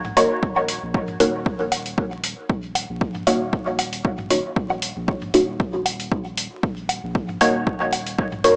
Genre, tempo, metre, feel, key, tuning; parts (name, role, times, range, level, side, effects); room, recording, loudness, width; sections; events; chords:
dub techno; 116 BPM; 4/4; swing 54% on 16ths; Eb minor; A4 = 440 Hz
soft dub sub bass; bass; 0.0-8.5 s; Eb1 to Bb1; -34 LUFS; equal; sidechain pumping
electronic toms and woodblock; percussion; 0.0-8.4 s; -29 LUFS; equal; sidechain pumping on perc, sidechain pumping on toms, dub echo
filtered dub chord stab; stabs; 0.2-8.6 s; Bb3 to Db5; -20 LUFS; equal; phaser, sidechain pumping, dub echo
electronic hi-hat; drums; 0.2-8.6 s; -26 LUFS; equal
electronic kick drum; drums; 0.4-8.3 s; -24 LUFS; equal; overdrive
moderate spring reverb, RT60 2.0 s; vinyl crackle, small speaker sound; -20 LUFS; side -31 dB against mid
0.0-8.6 A section
0.0 Ebm7